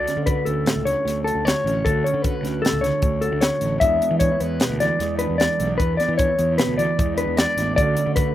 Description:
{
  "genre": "math rock and midwest emo",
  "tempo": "152 BPM",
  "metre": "5/4",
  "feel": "straight",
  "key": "D lydian",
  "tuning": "A4 = 440 Hz",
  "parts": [
    { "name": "mellow electric guitar", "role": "accompaniment", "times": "0.0-8.3 s", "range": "D2 to F#4", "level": "-26 LUFS", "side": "right 7 dB", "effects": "spring reverb, slapback echo" },
    { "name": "mellow electric guitar", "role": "arpeggios", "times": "0.0-8.3 s", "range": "A4 to E5", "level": "-22 LUFS", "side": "left 3 dB", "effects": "slapback echo" },
    { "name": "fuzz fingered electric bass", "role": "bass", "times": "0.0-8.2 s", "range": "A1 to E3", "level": "-26 LUFS", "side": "equal", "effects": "overdrive" },
    { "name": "crisp fusion drum kit", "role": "drums", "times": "0.1-8.3 s", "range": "hi-hat, kick drum, snare drum", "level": "-23 LUFS", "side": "equal", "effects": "none" }
  ],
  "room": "little or no reverb",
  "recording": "recorded outdoors, with no room sound",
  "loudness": "-18 LUFS",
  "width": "side -12 dB against mid",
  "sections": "0.0-8.3 A section",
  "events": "none",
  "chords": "0.0 Dmaj7; 3.8 E7; 7.8 Dmaj7"
}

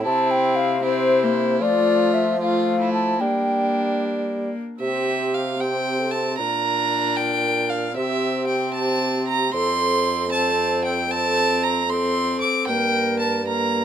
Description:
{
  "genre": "classical, renaissance-style consort dance",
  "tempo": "76 BPM (dotted quarters)",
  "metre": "6/8",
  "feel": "straight",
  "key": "unclear",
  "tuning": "A4 = 440 Hz",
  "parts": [
    { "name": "baroque flute", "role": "melody", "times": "0.0-13.8 s", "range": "G4 to A5", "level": "-24 LUFS", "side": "left 2 dB", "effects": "none" },
    { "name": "warm violin", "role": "second line", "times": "0.0-13.8 s", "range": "D4 to D6", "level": "-23 LUFS", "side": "right 2 dB", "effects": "none" },
    { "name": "warm viola", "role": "accompaniment", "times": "0.1-13.8 s", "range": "A3 to D4", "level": "-26 LUFS", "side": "left 3 dB", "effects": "none" },
    { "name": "warm bassoon", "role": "bass", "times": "0.1-13.8 s", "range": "F2 to G3", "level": "-26 LUFS", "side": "right 2 dB", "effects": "none" }
  ],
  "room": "light reverb",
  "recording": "close, detailed microphones",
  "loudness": "-19 LUFS",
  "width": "side -9 dB against mid",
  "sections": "0.0-4.8 A section; 4.8-13.8 B section",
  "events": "none",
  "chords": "0.0 C; 1.6 F; 3.2 Gm; 4.8 C; 6.4 Bb; 8.0 C; 9.5 F; 12.7 Gm"
}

